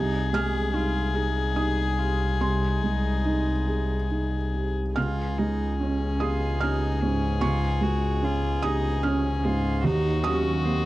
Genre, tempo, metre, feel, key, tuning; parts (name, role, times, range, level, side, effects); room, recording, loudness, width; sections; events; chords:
neoclassical piano and strings; 73 BPM; 3/4; uneven beats, rubato; A4 = 440 Hz
warm violin; melody; 0.0-10.9 s; Gb4 to Ab4; -32 LUFS; left 6 dB
rich cello; second line; 0.0-10.9 s; C4 to Ab4; -35 LUFS; right 3 dB
felt-muted upright piano; accompaniment; 0.0-10.9 s; C2 to F6; -27 LUFS; right 2 dB
rich double bass; bass; 0.0-10.9 s; C2 to Eb2; -27 LUFS; left 1 dB
little or no reverb; dry, close 1970s-style studio recording; -23 LUFS; side -16 dB against mid
0.0-10.9 A section
0.0 Ab/C; 5.0 Db; 9.8 Ebm